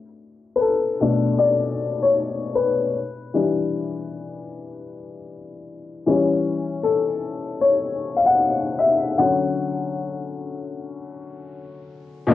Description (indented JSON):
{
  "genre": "hip hop",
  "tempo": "77 BPM",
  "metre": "4/4",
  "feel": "swing 65% on 16ths",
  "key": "unclear",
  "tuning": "A4 = 440 Hz",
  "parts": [
    { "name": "warm upright piano", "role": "solo", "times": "0.6-12.3 s", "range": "B2 to F#5", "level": "-20 LUFS", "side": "left 3 dB", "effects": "none" }
  ],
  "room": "moderate booth ambience, RT60 0.2 s",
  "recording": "home recording on cassette, low-pass filter",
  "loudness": "-19 LUFS",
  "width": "side -13 dB against mid",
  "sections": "0.0-12.3 A section",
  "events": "upright piano solo 0.0-12.3; filter sweep 0.0-12.3",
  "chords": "0.0 Bm7; 3.0 Em7; 6.1 A7/E; 9.2 Dmaj7",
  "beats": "0.61 1.39 2.17 | 2.95 3.73 4.51 5.29 | 6.07 6.85 7.63 8.40 | 9.18 9.96 10.74 11.52 | 12.30"
}